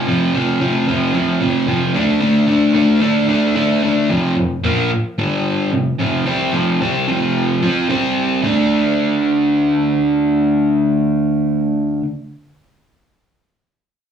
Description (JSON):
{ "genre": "rock", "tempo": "111 BPM", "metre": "4/4", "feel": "straight", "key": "D minor", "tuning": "A4 = 440 Hz", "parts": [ { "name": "crunchy overdriven guitar", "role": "solo", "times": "0.0-12.0 s", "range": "F2 to F4", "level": "-14 LUFS", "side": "equal", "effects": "slapback echo" } ], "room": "moderate club reverb, RT60 0.6 s", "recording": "live gig heard through the venue's PA, club reverb, small room ambience", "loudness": "-14 LUFS", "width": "side -8 dB against mid", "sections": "0.0-4.1 A section; 4.1-8.4 B section; 8.4-12.8 C section", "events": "none", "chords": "0.0 F5; 2.0 D5; 4.1 F5; 5.2 G5; 5.7 F5; 7.9 C5; 8.4 D5", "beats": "0.35 0.88 1.42 | 1.95 2.49 3.02 3.56 | 4.10 4.64 5.18 5.72 | 6.26 6.81 7.35 7.89 | 8.44 8.98 9.52 10.06 | 10.61 11.15 11.69" }